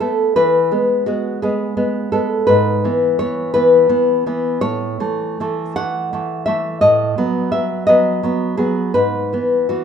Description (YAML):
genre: romantic piece for solo classical guitar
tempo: 56 BPM (dotted quarters)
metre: 6/8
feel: rubato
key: E major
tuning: A4 = 440 Hz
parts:
  - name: nylon-string guitar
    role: solo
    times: 0.0-9.8 s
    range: G#2 to F#5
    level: -15 LUFS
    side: left 1 dB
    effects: none
room: moderate recital hall reverb, RT60 1.5 s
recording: minimal, uncompressed stereo recording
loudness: -15 LUFS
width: side -7 dB against mid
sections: 0.0-9.8 A section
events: none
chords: 0.4 E; 2.5 E/G#; 4.6 A; 6.8 B7/A; 9.0 E/G#